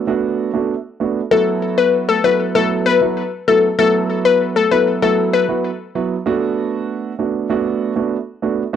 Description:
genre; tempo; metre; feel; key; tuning
dancehall; 97 BPM; 4/4; straight; unclear; A4 = 440 Hz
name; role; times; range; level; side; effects
dark concert grand piano; accompaniment; 0.0-8.8 s; F#3 to F#4; -19 LUFS; right 6 dB; cassette tape
glassy wavetable pluck; melody; 1.3-5.5 s; A4 to B4; -14 LUFS; left 6 dB; chorus, cassette tape, tape echo
room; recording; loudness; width
moderate spring reverb, RT60 1.1 s; home recording on cassette; -15 LUFS; side -9 dB against mid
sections
0.0-8.8 A section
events
none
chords
0.0 Bm7; 1.3 Esus2; 6.3 Bm7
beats
0.08 0.69 | 1.31 1.93 2.55 3.17 | 3.79 4.41 5.03 5.64 | 6.26 6.88 7.50 8.12 | 8.74

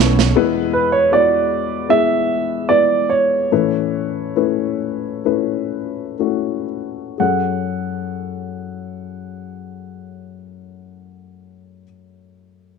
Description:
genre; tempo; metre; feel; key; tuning
pop; 58-79 BPM; 4/4; straight; F# minor; A4 = 440 Hz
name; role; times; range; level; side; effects
dark upright piano; accompaniment; 0.0-12.8 s; E2 to C#5; -20 LUFS; left 12 dB; none
warm grand piano; melody; 0.7-11.8 s; B4 to F#5; -17 LUFS; right 5 dB; none
room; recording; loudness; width
light reverb, studio reverb; 1960s-style stereo; -16 LUFS; side -5 dB against mid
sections
0.4-7.2 A section; 7.2-11.3 B section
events
slowing down 0.4-7.2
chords
0.4 E; 3.5 Aadd9; 7.2 F#madd9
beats
| 0.36 1.13 1.90 2.69 | 3.51 4.36 5.25 6.19 | 7.19 8.22 9.25 10.28

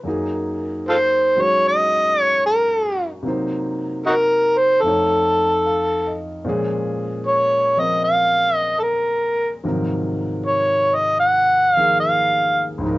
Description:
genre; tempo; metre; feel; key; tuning
jazz ballad; 75 BPM; 4/4; swing 67% on 8ths; unclear; A4 = 441 Hz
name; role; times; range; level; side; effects
clear grand piano; accompaniment; 0.0-13.0 s; Db2 to F5; -25 LUFS; equal; none
overdriven harmonica; melody; 0.9-12.6 s; Eb4 to Gb5; -15 LUFS; equal; cassette tape
room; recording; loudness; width
light reverb; home recording on cassette, nothing above 7.9 kHz; -16 LUFS; side -19 dB against mid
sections
0.0-13.0 A section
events
none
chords
0.1 Gb69; 3.2 Cm7b5; 4.8 F7b13; 6.4 Bbm7; 9.6 Ab13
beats
| 0.06 0.85 1.65 2.45 | 3.24 4.04 4.84 5.64 | 6.44 7.25 8.04 8.84 | 9.64 10.44 11.23 12.03 | 12.82

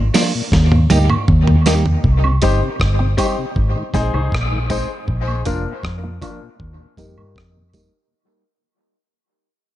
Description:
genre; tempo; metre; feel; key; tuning
dub reggae; 79 BPM; 4/4; straight; unclear; A4 = 442 Hz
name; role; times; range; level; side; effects
tonewheel organ; accompaniment; 0.0-7.8 s; Eb2 to Eb4; -25 LUFS; left 2 dB; chorus vibrato, slow rotary speaker, low-pass filter, dub echo
vintage muted fingered electric bass; bass; 0.0-7.9 s; F1 to G2; -16 LUFS; equal; none
semi-hollow electric guitar; accompaniment; 0.1-7.9 s; F3 to Ab4; -22 LUFS; right 4 dB; phaser, low-pass filter, dub echo
dusty soul sampler-style drum kit; drums; 0.1-7.9 s; hi-hat, kick drum, rim click, snare drum, toms; -20 LUFS; equal; none
tambourine and woodblock; percussion; 0.1-7.9 s; none; -29 LUFS; right 5 dB; dub echo
bright concert grand piano; stabs; 2.4-7.9 s; D4 to C5; -25 LUFS; left 7 dB; low-pass filter, dub echo
room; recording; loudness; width
little or no reverb; echo-heavy mix, nothing above 10.7 kHz; -14 LUFS; side -14 dB against mid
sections
0.0-2.0 A section; 2.0-8.1 B section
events
break 0.0-2.0; drum fill 0.0-2.0; fade-out 2.0-8.1; filter sweep 2.0-8.1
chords
0.0 Bb; 0.5 Eb; 2.0 Cm; 3.6 Ab; 5.1 Bb; 6.6 Eb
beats
0.52 1.28 | 2.04 2.80 3.56 4.32 | 5.08 5.84 6.60 7.36

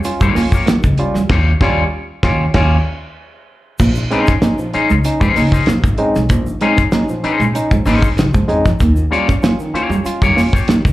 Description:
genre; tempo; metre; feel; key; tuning
funk; 96 BPM; 4/4; straight; Bb dorian; A4 = 440 Hz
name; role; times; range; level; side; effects
barky tine electric piano; stabs; 0.0-10.8 s; Bb2 to F4; -19 LUFS; right 1 dB; overdrive, slapback echo
damped 70s drum kit; drums; 0.0-10.9 s; crash cymbal, hi-hat, kick drum, snare drum; -16 LUFS; equal; none
tube shaker; percussion; 0.0-10.9 s; none; -41 LUFS; left 2 dB; none
mellow electric guitar; riff; 0.1-10.9 s; F3 to Db4; -19 LUFS; right 2 dB; slapback echo
electric guitar with an envelope filter; accompaniment; 0.2-10.7 s; Bb3 to Db5; -19 LUFS; left 5 dB; slapback echo
upright bass; bass; 0.4-10.9 s; Ab1 to F2; -18 LUFS; equal; none
room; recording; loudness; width
little or no reverb; live gig heard through the venue's PA, club reverb; -12 LUFS; side -16 dB against mid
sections
0.0-3.8 A section; 3.8-10.9 A section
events
band accent 1.3-3.8; break 2.5-3.8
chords
0.0 Eb9; 3.8 Bbm11; 8.8 Eb9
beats
0.05 0.67 | 1.30 1.92 2.55 3.17 | 3.80 4.42 5.05 5.68 | 6.30 6.93 7.55 8.18 | 8.81 9.43 10.06 10.69

